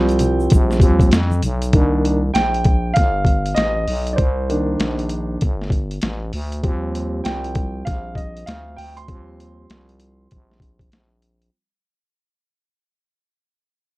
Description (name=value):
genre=hip hop, jazz-hop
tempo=98 BPM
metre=4/4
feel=swing 63% on 16ths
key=unclear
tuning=A4 = 440 Hz
part: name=dark baby grand piano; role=accompaniment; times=0.0-11.5 s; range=Eb3 to C6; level=-21 LUFS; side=right 1 dB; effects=none
part: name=growling FM bass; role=bass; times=0.0-11.5 s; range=G1 to F2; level=-23 LUFS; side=equal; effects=none
part: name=boom bap sampler-style drum kit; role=drums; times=0.1-11.5 s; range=hi-hat, kick drum, snare drum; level=-18 LUFS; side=equal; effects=overdrive
part: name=tube shaker and congas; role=percussion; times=0.1-1.7 s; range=none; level=-28 LUFS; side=left 2 dB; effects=none
room=light reverb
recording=dark, warm production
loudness=-16 LUFS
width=side -20 dB against mid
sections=0.0-1.7 A section; 1.7-11.5 B section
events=grand piano solo 0.0-1.7, 1.7-11.5; fade-out 1.7-11.5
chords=0.0 Eb6; 1.7 Cm7; 6.6 Eb6